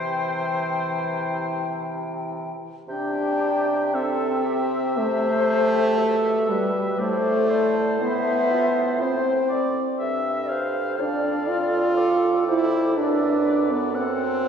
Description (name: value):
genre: classical, slow romantic movement for wind quintet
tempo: 52-61 BPM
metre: 4/4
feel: rubato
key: C major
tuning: A4 = 440 Hz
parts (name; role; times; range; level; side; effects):
- mellow hollow silver concert flute; melody; 0.0-14.5 s; G4 to G5; -27 LUFS; left 3 dB; none
- warm oboe; second line; 0.0-14.5 s; C5 to G5; -31 LUFS; left 1 dB; none
- warm French horn; accompaniment; 0.0-14.5 s; E3 to F4; -23 LUFS; right 1 dB; none
- warm clarinet; accompaniment; 0.0-14.5 s; E4 to A4; -34 LUFS; right 3 dB; none
- mellow bassoon; bass; 0.0-14.5 s; F2 to C3; -30 LUFS; right 1 dB; none
room: wet scoring stage reverb, RT60 1.6 s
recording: recorded in a church or concert hall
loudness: -20 LUFS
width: side -7 dB against mid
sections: 0.0-2.9 A section; 2.9-14.5 A section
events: none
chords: 0.0 C; 7.0 Am; 11.0 Dm/F; 13.0 D7/F#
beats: 0.67 1.77 | 2.89 3.94 4.97 5.98 | 6.99 8.00 9.01 9.99 | 10.98 11.96 12.96 13.94